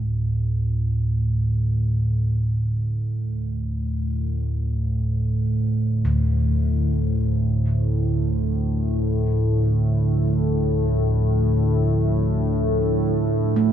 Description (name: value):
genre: dark ambient drone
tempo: free time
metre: none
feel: none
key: D minor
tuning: A4 = 440 Hz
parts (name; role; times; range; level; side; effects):
- gamelan-type bossed gongs; arpeggios; 0.0-13.7 s; D2 to E4; -26 LUFS; right 1 dB; none
- analog drone; drone; 0.0-13.7 s; D2 to A2; -20 LUFS; equal; wide subtle chorus
- dark analog pad; sustained chords; 0.1-13.7 s; F3 to C5; -34 LUFS; right 2 dB; chorus
room: wet cathedral reverb, RT60 6.2 s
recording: none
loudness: -20 LUFS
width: side -10 dB against mid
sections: 0.1-13.7 A section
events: fade-in on analog synth pad 0.1-13.7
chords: 0.1 Dmadd9